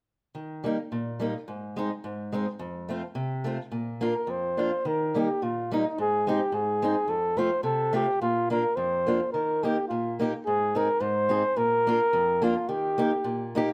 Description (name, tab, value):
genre	alpine folk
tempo	107 BPM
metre	2/4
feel	swing 54% on 8ths, rubato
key	Eb major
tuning	A4 = 441 Hz
part	fingerpicked acoustic archtop guitar	accompaniment	0.3-13.7 s	F2 to Ab4	-31 LUFS	equal	none
part	mellow flugelhorn	melody	4.1-13.6 s	Eb4 to C5	-28 LUFS	equal	none
room	light reverb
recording	close, detailed microphones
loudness	-27 LUFS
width	mono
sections	0.3-4.8 A section; 4.8-13.7 B section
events	none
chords	0.3 Eb; 1.5 Ab; 2.6 F; 3.7 Bb; 4.8 Eb; 6.0 Ab; 7.1 F; 8.2 Bb; 9.3 Eb; 10.5 Ab; 11.6 Bb; 12.7 Eb